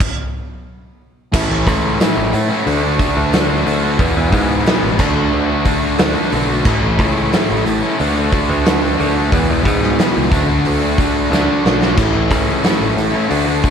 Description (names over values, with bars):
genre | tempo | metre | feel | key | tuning
classic rock | 90 BPM | 4/4 | straight | unclear | A4 = 435 Hz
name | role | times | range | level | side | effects
big rock drum kit | drums | 0.0-13.7 s | crash cymbal, hi-hat, kick drum, snare drum | -18 LUFS | equal | none
distorted electric guitar | riff | 1.3-13.7 s | A2 to F#4 | -20 LUFS | left 9 dB | distortion, slapback echo
distorted electric guitar | riff | 1.3-13.7 s | E2 to G#4 | -21 LUFS | right 9 dB | distortion, slapback echo
overdriven electric guitar | riff | 1.3-13.7 s | E2 to D4 | -21 LUFS | equal | phaser, slapback echo
modern bright picked electric bass | bass | 1.3-13.6 s | A1 to A2 | -19 LUFS | equal | none
tambourine | percussion | 1.4-13.7 s | none | -40 LUFS | right 4 dB | none
room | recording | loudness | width
moderate concert hall reverb, RT60 2.5 s | big arena sound | -13 LUFS | side -7 dB against mid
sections
0.0-1.3 A section; 1.3-13.7 B section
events
stop 0.0-1.3; drum fill 11.3-12.0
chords
0.0 N.C.; 1.3 A; 2.7 D; 4.0 E; 5.0 D; 6.7 A; 8.0 D; 9.3 E; 10.3 D; 12.0 A